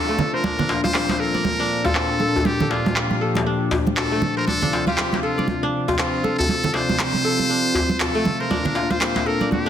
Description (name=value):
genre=afro house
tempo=119 BPM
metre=4/4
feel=swing 59% on 16ths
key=unclear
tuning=A4 = 438 Hz
part: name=trumpet with metal mute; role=melody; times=0.0-9.7 s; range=F4 to C5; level=-25 LUFS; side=equal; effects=dub echo
part: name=warm analog pad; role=sustained chords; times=0.0-9.7 s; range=Bb2 to G4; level=-24 LUFS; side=left 2 dB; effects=chorus
part: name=kora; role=arpeggios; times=0.0-9.7 s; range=A3 to D5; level=-26 LUFS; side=equal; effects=low-pass filter, dub echo
part: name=congas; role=percussion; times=0.2-9.6 s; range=none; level=-26 LUFS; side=right 3 dB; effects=none
part: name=djembe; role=percussion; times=0.4-9.6 s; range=none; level=-28 LUFS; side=left 2 dB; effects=none
part: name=electronic handclaps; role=drums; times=0.9-9.1 s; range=none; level=-27 LUFS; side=equal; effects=low-pass filter on snare, low-pass filter on perc, low-pass filter on room
room=light reverb, small room reverb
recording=dense, heavily limited modern master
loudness=-18 LUFS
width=side -9 dB against mid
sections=0.0-9.7 A section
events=none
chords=0.4 Bbmaj7; 4.5 Dm7; 8.5 Bbmaj7